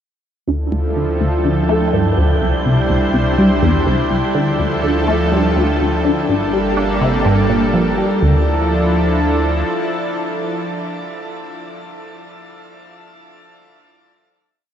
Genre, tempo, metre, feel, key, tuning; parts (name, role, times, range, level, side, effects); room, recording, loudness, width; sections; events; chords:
ambient, sequencer-driven space music; 124 BPM; 4/4; straight; D minor; A4 = 440 Hz
lush unison pad; sustained chords; 0.6-11.6 s; F3 to C5; -18 LUFS; equal; chorus
resonant blip pluck; riff; 0.5-8.4 s; C2 to D4; -17 LUFS; equal; phaser, tape echo
round analog bass; bass; 0.5-9.6 s; G1 to D2; -22 LUFS; equal
wind-like tuned noise texture; texture; 1.0-8.2 s; G5; -30 LUFS; right 4 dB; built-in reverb
wet shimmer reverb, RT60 7.5 s; dark, warm production; -14 LUFS; side -9 dB against mid
0.5-8.2 A section; 8.2-12.1 final chord
0.5 Dmadd9; 2.4 Cadd9; 4.4 Dmadd9; 6.3 Gmadd9; 8.2 Dmadd9